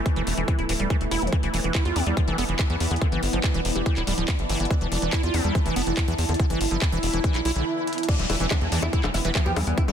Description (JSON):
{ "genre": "psychedelic trance", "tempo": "142 BPM", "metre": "4/4", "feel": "straight", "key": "E phrygian", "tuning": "A4 = 440 Hz", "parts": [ { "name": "bubbling stepped-filter texture", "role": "sustained chords", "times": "0.0-9.9 s", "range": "E3 to E4", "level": "-30 LUFS", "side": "right 1 dB", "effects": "chorus, built-in reverb, sidechain pumping" }, { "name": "granular cloud pad", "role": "texture", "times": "0.0-7.7 s", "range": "B3 to B5", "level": "-35 LUFS", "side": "right 1 dB", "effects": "built-in reverb, sidechain pumping" }, { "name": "drum and bass drum kit", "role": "drums", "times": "0.1-9.9 s", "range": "bongos, crash cymbal, handclaps, hi-hat", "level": "-30 LUFS", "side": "left 2 dB", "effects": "none" }, { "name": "electronic kick drum", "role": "drums", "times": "0.1-9.9 s", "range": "none", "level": "-23 LUFS", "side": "equal", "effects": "none" }, { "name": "liquid acid bass", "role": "riff", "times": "0.2-9.9 s", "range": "D3 to F4", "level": "-29 LUFS", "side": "right 1 dB", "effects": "chorus, auto-pan, sidechain pumping, ping-pong delay" }, { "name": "tight sequencer bass", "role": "bass", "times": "0.2-9.9 s", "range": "D1 to E2", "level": "-27 LUFS", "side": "equal", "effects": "none" }, { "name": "resonant blip pluck", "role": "second line", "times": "2.0-3.9, 8.7-9.4 s", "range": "G4 to D5", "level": "-39 LUFS", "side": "right 5 dB", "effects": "none" }, { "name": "oud", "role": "melody", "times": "8.1-9.9 s", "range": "E3 to G4", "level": "-31 LUFS", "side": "equal", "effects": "phaser, sidechain pumping, ping-pong delay" }, { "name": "downlifter", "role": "sound effects", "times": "8.1-9.9 s", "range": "none", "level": "-33 LUFS", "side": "right 1 dB", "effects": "none" } ], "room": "light reverb, digital ambience", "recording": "dense, heavily limited modern master", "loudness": "-21 LUFS", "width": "side -8 dB against mid", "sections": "0.0-8.1 A section; 8.1-9.9 B section", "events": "fade-in on ambient pad 0.0-8.1; break 7.7-8.1; drum fill 7.9; drop 8.1-9.9", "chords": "0.0 E5" }